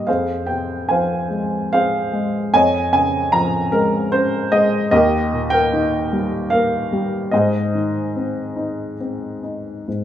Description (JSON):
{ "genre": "classical, lyrical solo piano", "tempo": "74 BPM", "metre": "3/4", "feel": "rubato", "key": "Ab major", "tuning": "A4 = 440 Hz", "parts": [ { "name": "warm upright piano", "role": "solo", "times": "0.0-10.0 s", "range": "Eb2 to Bb5", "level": "-17 LUFS", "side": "equal", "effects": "none" } ], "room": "moderate recital hall reverb, RT60 1.7 s", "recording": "minimal, uncompressed stereo recording", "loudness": "-16 LUFS", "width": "side -10 dB against mid", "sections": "0.0-9.9 A section", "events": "none", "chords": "0.1 Fm; 2.5 Dbadd9/F; 4.9 Ebadd9; 7.3 Ab", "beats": "| 0.08 0.90 1.72 | 2.53 3.33 4.12 | 4.92 5.72 6.51 | 7.32 8.14 8.98 | 9.87" }